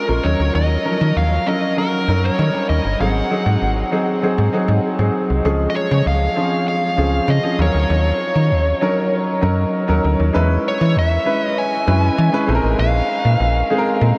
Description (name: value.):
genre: polished 1980s jazz-funk pop.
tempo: 98 BPM.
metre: 4/4.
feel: straight.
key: Eb dorian.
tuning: A4 = 440 Hz.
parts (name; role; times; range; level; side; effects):
nasal lead guitar with a parked wah; melody; 0.0-14.2 s; Bb4 to G#5; -24 LUFS; equal; overdrive.
clear grand piano; accompaniment; 0.0-14.2 s; F3 to B4; -22 LUFS; equal; subtle chorus.
slap-like FM bass; bass; 0.1-14.1 s; G1 to E3; -19 LUFS; equal; none.
room: wet huge ambient reverb, RT60 7.7 s.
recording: dreamy mix soaked in reverb.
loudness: -18 LUFS.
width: mono.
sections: 0.0-5.4 A section; 5.4-14.2 B section.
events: none.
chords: 0.2 Ebm7; 2.4 Eb7; 3.0 Ab7; 5.4 Dbmaj7; 7.6 Ebm7; 10.3 E6; 12.5 Bb9sus4.